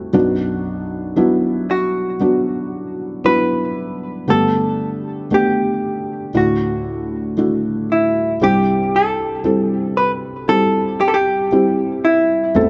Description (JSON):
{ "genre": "pop", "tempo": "58 BPM", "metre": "4/4", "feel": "straight", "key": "unclear", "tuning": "A4 = 440 Hz", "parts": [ { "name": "felt-muted upright piano", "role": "accompaniment", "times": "0.0-12.7 s", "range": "A1 to A4", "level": "-20 LUFS", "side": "equal", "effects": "none" }, { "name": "vintage hollow-body jazz guitar", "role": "melody", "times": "1.7-12.7 s", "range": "E4 to B4", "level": "-20 LUFS", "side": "equal", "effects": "none" } ], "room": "light reverb, small room reverb", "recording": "nothing above 7.8 kHz", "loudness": "-18 LUFS", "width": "mono", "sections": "0.0-8.4 A section; 8.4-12.7 B section", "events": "none", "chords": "0.1 Bm; 4.3 Gadd9; 6.4 Dadd9; 8.4 C" }